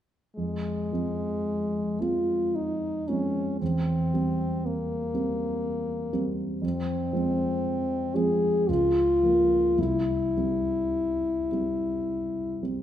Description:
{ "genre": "classical, romantic duo for French horn and grand piano", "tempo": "51-61 BPM", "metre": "3/4", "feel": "rubato", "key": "F minor", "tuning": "A4 = 439 Hz", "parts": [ { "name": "warm French horn", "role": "melody", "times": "0.4-12.6 s", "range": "Ab3 to Ab4", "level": "-26 LUFS", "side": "left 2 dB", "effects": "none" }, { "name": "dark grand piano", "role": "accompaniment", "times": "0.4-12.8 s", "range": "C2 to C4", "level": "-29 LUFS", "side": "right 2 dB", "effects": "none" } ], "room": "moderate recital hall reverb, RT60 1.5 s", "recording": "none", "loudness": "-24 LUFS", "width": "side -11 dB against mid", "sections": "0.4-12.8 A section", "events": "none", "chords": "0.4 Fm; 3.6 C7/E; 6.6 Fm; 8.7 Bbm/Db; 9.8 C", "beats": "| 0.36 1.46 2.54 | 3.61 4.63 5.64 | 6.63 7.64 8.68 | 9.78 10.94 12.06" }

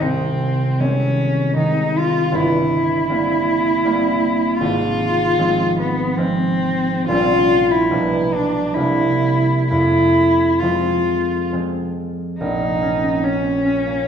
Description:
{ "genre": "classical, romantic duo for cello and harp", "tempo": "62-82 BPM", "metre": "3/4", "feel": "rubato", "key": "F minor", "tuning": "A4 = 441 Hz", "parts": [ { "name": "rich cello", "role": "melody", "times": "0.0-14.1 s", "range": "B3 to F4", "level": "-18 LUFS", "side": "equal", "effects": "none" }, { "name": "concert harp", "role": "accompaniment", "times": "0.0-14.1 s", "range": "G1 to D4", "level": "-20 LUFS", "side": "right 1 dB", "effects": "none" } ], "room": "wet recital hall reverb, RT60 1.3 s", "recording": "heard from further back in the room", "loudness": "-16 LUFS", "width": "side -8 dB against mid", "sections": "0.0-12.4 A section; 12.4-14.1 B section", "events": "none", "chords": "0.0 Ab/C; 2.3 C7/G; 4.6 Fm/Ab; 7.1 Gdim/Bb; 7.9 G7/B; 8.8 C7; 9.7 Fm; 12.4 Bbm", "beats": "| 0.02 0.80 1.57 | 2.34 3.10 3.84 | 4.59 5.37 6.17 | 7.08 7.91 8.76 | 9.69 10.60 11.51 | 12.40 13.23 14.06" }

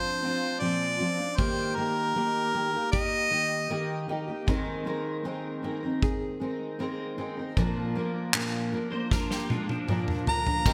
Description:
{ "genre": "acoustic pop", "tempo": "78 BPM", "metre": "4/4", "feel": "straight", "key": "unclear", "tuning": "A4 = 440 Hz", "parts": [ { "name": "warm harmonica", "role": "melody", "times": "0.0-4.0, 10.3-10.7 s", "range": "Bb4 to Bb5", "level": "-30 LUFS", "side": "equal", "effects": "delay" }, { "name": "fingerpicked steel-string acoustic guitar", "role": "accompaniment", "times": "0.0-10.7 s", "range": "Bb2 to Bb4", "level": "-34 LUFS", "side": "equal", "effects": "double-tracked" }, { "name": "nylon-string guitar", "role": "arpeggios", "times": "0.0-10.7 s", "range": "Eb3 to Ab4", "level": "-39 LUFS", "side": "equal", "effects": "none" }, { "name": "unplugged drum kit", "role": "drums", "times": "1.4-10.7 s", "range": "crash cymbal, handclaps, kick drum, snare drum, toms", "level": "-31 LUFS", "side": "equal", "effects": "none" }, { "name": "electric guitar at the edge of break-up", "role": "second line", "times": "8.9-10.6 s", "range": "F3 to C5", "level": "-38 LUFS", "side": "equal", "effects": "ensemble chorus" } ], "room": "wet lush hall reverb, RT60 1.6 s, studio ambience", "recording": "bright 1980s-style digital production", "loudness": "-29 LUFS", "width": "mono", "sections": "0.0-10.7 A section", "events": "drum fill 9.1-10.7", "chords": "0.0 Bbadd9; 1.4 Eb; 4.5 Abadd9; 7.6 Bb", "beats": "0.61 | 1.39 2.16 2.93 3.71 | 4.48 5.25 6.03 6.80 | 7.57 8.34 9.12 9.89 | 10.66" }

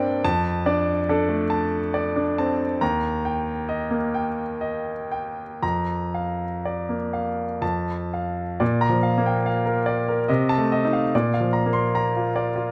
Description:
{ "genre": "classical, romantic character piece for solo piano", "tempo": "58-75 BPM", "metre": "3/4", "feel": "rubato", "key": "Bb major", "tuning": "A4 = 441 Hz", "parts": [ { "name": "bright grand piano", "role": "solo", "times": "0.0-12.7 s", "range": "Eb2 to C6", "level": "-24 LUFS", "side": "equal", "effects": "none" } ], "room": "light reverb", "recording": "close, detailed microphones", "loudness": "-24 LUFS", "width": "mono", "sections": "0.0-8.6 A section; 8.6-12.7 B section", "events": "none", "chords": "0.2 Dm/F; 2.8 Eb; 5.6 Bb/F; 7.6 F; 8.6 Bb; 10.3 Adim/C; 11.1 Bb", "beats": "| 0.23 1.07 1.94 | 2.81 3.68 4.61 | 5.62 6.64 7.62 | 8.60 9.45 10.29 | 11.13 11.94" }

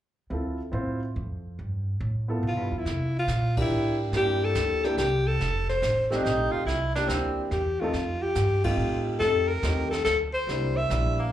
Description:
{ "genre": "jazz, small-group swing and bop", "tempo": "142 BPM", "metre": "3/4", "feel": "swing 68% on 8ths", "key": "C mixolydian", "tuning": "A4 = 440 Hz", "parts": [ { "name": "warm upright piano", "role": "accompaniment", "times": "0.3-11.2 s", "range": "G3 to C5", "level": "-31 LUFS", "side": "equal", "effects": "plate reverb, slapback echo" }, { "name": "upright bass", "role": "bass", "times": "0.3-11.3 s", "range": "F1 to C3", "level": "-29 LUFS", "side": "equal", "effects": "none" }, { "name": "breathy alto saxophone", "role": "melody", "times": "2.5-11.2 s", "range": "E4 to E5", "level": "-26 LUFS", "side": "left 2 dB", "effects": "plate reverb, slapback echo" }, { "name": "jazz brush drum kit", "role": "drums", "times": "2.9-11.3 s", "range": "brushed snare drum, hi-hat, kick drum, ride cymbal, snare drum", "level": "-35 LUFS", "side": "right 1 dB", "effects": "none" }, { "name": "breathy tenor saxophone", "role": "second line", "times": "6.1-7.4, 11.2-11.3 s", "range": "Bb3 to F4", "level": "-29 LUFS", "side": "right 2 dB", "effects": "plate reverb, slapback echo" } ], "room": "moderate club reverb, RT60 0.6 s", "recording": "live gig heard through the venue's PA, club reverb", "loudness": "-24 LUFS", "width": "side -11 dB against mid", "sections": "0.3-2.9 A section; 2.9-11.3 B section", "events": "band accent 3.5, 8.6", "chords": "0.3 Dm9; 1.6 G13; 2.9 C7; 5.4 F7; 6.7 C7; 7.9 F7; 10.5 C7", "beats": "| 0.31 0.73 1.16 | 1.58 2.01 2.43 | 2.85 3.28 3.70 | 4.12 4.55 4.97 | 5.40 5.82 6.24 | 6.67 7.09 7.51 | 7.94 8.36 8.78 | 9.21 9.63 10.05 | 10.48 10.90" }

